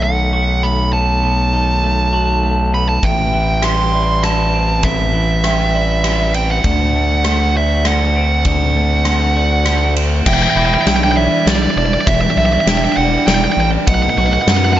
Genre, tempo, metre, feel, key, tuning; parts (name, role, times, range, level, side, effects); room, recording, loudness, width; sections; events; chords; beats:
post-rock; 100 BPM; 3/4; straight; E minor; A4 = 440 Hz
fuzz lead guitar; melody; 0.0-14.8 s; D5 to C6; -17 LUFS; right 2 dB; distortion, tape echo
twelve-string electric guitar; arpeggios; 0.0-14.8 s; E2 to F#4; -21 LUFS; left 1 dB
gritty driven synth bass; bass; 0.0-14.8 s; E1 to F#2; -16 LUFS; equal; distortion
vibraphone with medium mallets; arpeggios; 3.0-14.8 s; D5 to G5; -25 LUFS; right 5 dB; tape echo
big rock drum kit; drums; 3.0-14.6 s; crash cymbal, kick drum, ride cymbal, rim click, snare drum; -19 LUFS; equal
warm studio string section; sustained chords; 10.3-14.8 s; G3 to D5; -26 LUFS; left 1 dB
small room ambience; nothing above 7.6 kHz; -12 LUFS; side -12 dB against mid
0.0-10.3 A section; 10.3-14.8 B section
0.0 B7; 3.0 Am7; 6.6 D7; 10.3 Em7; 13.9 B7
0.02 0.62 | 1.23 1.83 2.43 | 3.03 3.63 4.24 | 4.84 5.44 6.04 | 6.65 7.25 7.85 | 8.45 9.06 9.66 | 10.26 10.87 11.47 | 12.07 12.67 13.28 | 13.88 14.48